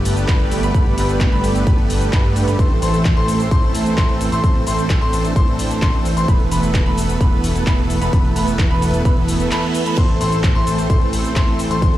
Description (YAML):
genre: EDM, festival progressive house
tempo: 130 BPM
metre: 4/4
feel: straight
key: A minor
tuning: A4 = 440 Hz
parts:
  - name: lush unison pad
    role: sustained chords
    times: 0.0-12.0 s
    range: G3 to D5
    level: -27 LUFS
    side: right 1 dB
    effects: chorus, sidechain pumping
  - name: bright grand piano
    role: arpeggios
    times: 0.0-12.0 s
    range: B5 to C6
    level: -26 LUFS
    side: left 1 dB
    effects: sidechain pumping, digital delay
  - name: supersaw chords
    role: riff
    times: 0.0-12.0 s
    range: D3 to C5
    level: -21 LUFS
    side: right 1 dB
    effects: lush chorus, sidechain pumping, digital delay
  - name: fat analog bass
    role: bass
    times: 0.0-12.0 s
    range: E1 to G2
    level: -21 LUFS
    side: equal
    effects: tube saturation, sidechain pumping
  - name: big-room dance drum kit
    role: drums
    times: 0.1-12.0 s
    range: cabasa, crash cymbal, handclaps, hi-hat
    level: -28 LUFS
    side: left 1 dB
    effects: none
  - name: electronic kick drum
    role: drums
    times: 0.3-11.9 s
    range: none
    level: -16 LUFS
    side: equal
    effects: none
  - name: reverse cymbal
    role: sound effects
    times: 9.3-10.0 s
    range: none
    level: -31 LUFS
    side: right 5 dB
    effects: none
room: light reverb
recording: played on a big sound system in a bare room, large studio reverb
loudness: -14 LUFS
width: side -14 dB against mid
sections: 0.0-12.0 A section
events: reverse cymbal 9.3-10.0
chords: 0.0 Gadd9; 2.6 Am; 6.3 Esus4; 10.0 Am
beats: 0.28 | 0.74 1.21 1.67 2.13 | 2.59 3.05 3.52 3.98 | 4.44 4.90 5.36 5.82 | 6.28 6.75 7.21 7.67 | 8.13 8.59 9.05 9.52 | 9.98 10.44 10.90 11.36 | 11.82